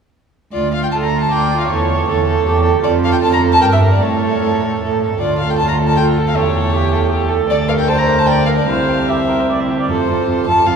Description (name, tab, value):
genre	quick classical-period movement for string quartet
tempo	155 BPM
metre	3/4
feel	rubato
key	D minor, F major from 7.5 s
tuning	A4 = 441 Hz
part	warm violin	melody	0.5-10.8 s	C5 to Bb5	-18 LUFS	left 1 dB	none
part	rich violin	second line	0.5-10.8 s	E4 to D5	-20 LUFS	right 3 dB	none
part	rich cello	bass	0.5-10.7 s	C2 to A2	-17 LUFS	right 1 dB	none
part	rich viola	accompaniment	0.9-10.8 s	F4 to E5	-20 LUFS	right 5 dB	none
room	wet cathedral reverb, RT60 7.0 s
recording	recorded in a church or concert hall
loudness	-13 LUFS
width	side -6 dB against mid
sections	0.5-9.9 A section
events	none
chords	0.5 Dm; 1.7 A7/E; 2.8 F; 3.6 Gm; 4.0 A; 5.2 Dm; 6.4 A7/E; 7.5 Bb/D; 8.7 C; 9.9 F